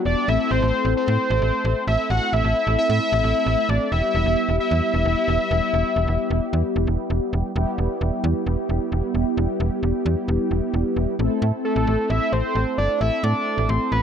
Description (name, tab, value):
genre	synth-pop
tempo	132 BPM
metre	4/4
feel	straight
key	E minor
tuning	A4 = 436 Hz
part	mellow synth brass	accompaniment	0.0-14.0 s	G3 to A4	-24 LUFS	left 1 dB	chorus, phaser, plate reverb
part	fat analog lead	melody	0.1-7.1, 11.6-14.0 s	A4 to F#5	-22 LUFS	left 1 dB	chorus, plate reverb, ping-pong delay
part	slap-like FM bass	bass	0.1-14.0 s	E1 to A2	-22 LUFS	equal	none
room	moderate small room reverb, RT60 0.5 s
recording	none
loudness	-19 LUFS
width	side -8 dB against mid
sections	0.0-7.6 A section; 7.6-11.2 B section; 11.2-14.0 C section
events	none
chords	0.3 Am; 3.9 Em; 11.2 Am